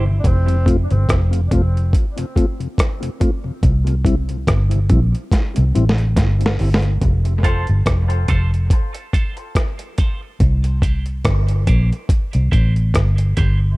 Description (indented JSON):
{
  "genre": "dub reggae",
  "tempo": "71 BPM",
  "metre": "4/4",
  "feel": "swing 57% on 16ths",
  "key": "F major",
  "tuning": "A4 = 440 Hz",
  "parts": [
    { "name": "clean electric guitar", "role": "accompaniment", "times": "0.0-0.1, 7.4-13.6 s", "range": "E4 to C5", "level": "-31 LUFS", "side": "right 5 dB", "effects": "spring reverb, high-pass filter, dub echo" },
    { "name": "vintage muted fingered electric bass", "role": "bass", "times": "0.0-13.8 s", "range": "F1 to C2", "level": "-16 LUFS", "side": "equal", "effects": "none" },
    { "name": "mellow tonewheel organ", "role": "accompaniment", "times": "0.1-13.7 s", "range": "F2 to F4", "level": "-25 LUFS", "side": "left 2 dB", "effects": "slow rotary speaker, high-pass filter, dub echo" },
    { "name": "warm tenor saxophone", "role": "melody", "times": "0.2-0.7 s", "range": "C4 to D4", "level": "-30 LUFS", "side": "equal", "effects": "dub echo" },
    { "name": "dusty soul sampler-style drum kit", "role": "drums", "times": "0.2-13.6 s", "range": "hi-hat, kick drum, rim click, snare drum", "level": "-18 LUFS", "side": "equal", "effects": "overdrive" },
    { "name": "dark upright piano", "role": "stabs", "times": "7.4-7.6 s", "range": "C4 to C5", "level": "-33 LUFS", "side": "left 5 dB", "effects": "high-pass filter, dub echo" }
  ],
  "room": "little or no reverb",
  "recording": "echo-heavy mix",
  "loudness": "-15 LUFS",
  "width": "side -21 dB against mid",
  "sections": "0.0-7.0 A section; 7.0-13.8 A section",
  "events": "break 0.0-7.0; filter sweep 3.6-13.8; drum fill 5.3-7.0",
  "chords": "0.2 F5; 3.6 C5; 7.0 F; 10.4 C",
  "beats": "| 0.24 1.09 1.94 2.78 | 3.63 4.48 5.33 6.17 | 7.02 7.87 8.71 9.56 | 10.40 11.25 12.10 12.95"
}